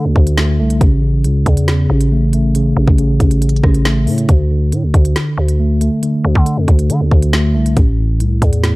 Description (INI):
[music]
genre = hip hop, drill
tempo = 138 BPM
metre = 4/4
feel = half-time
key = unclear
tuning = A4 = 442 Hz
[part]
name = mellow tine electric piano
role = accompaniment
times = 0.0-8.8 s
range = A2 to A3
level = -15 LUFS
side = equal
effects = medium stereo tremolo, low-pass filter
[part]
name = growling 808-style bass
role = bass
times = 0.0-8.8 s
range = A1 to D3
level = -15 LUFS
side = equal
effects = none
[part]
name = drill drum kit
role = drums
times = 0.2-8.7 s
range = hi-hat, kick drum, rim click, snare drum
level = -13 LUFS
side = equal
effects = none
[sound]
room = little or no reverb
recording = dark, warm production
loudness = -11 LUFS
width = side -21 dB against mid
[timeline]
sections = 0.0-8.8 A section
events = none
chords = 0.0 D7(no3); 0.8 A; 4.3 D5; 7.8 Am